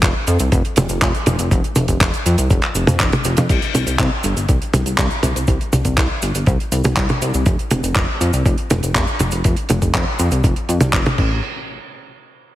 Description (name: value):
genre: italo disco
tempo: 121 BPM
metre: 4/4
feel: straight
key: unclear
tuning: A4 = 440 Hz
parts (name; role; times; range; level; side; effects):
- chorused synth bass; bass; 0.0-11.4 s; F1 to F2; -19 LUFS; equal; none
- damped 70s drum kit; drums; 0.0-11.3 s; cabasa, crash cymbal, handclaps, hi-hat, toms; -19 LUFS; right 1 dB; studio reverb
- electronic kick drum; drums; 0.0-11.3 s; none; -19 LUFS; equal; studio reverb
room: light reverb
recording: heavily compressed radio sound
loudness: -15 LUFS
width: side -14 dB against mid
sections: 0.0-3.5 A section; 3.5-11.4 B section; 11.4-12.6 C section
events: none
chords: none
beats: 0.03 0.52 1.02 | 1.51 2.01 2.50 3.00 | 3.50 3.99 4.49 4.98 | 5.48 5.98 6.47 6.97 | 7.46 7.96 8.46 8.95 | 9.45 9.94 10.44 10.94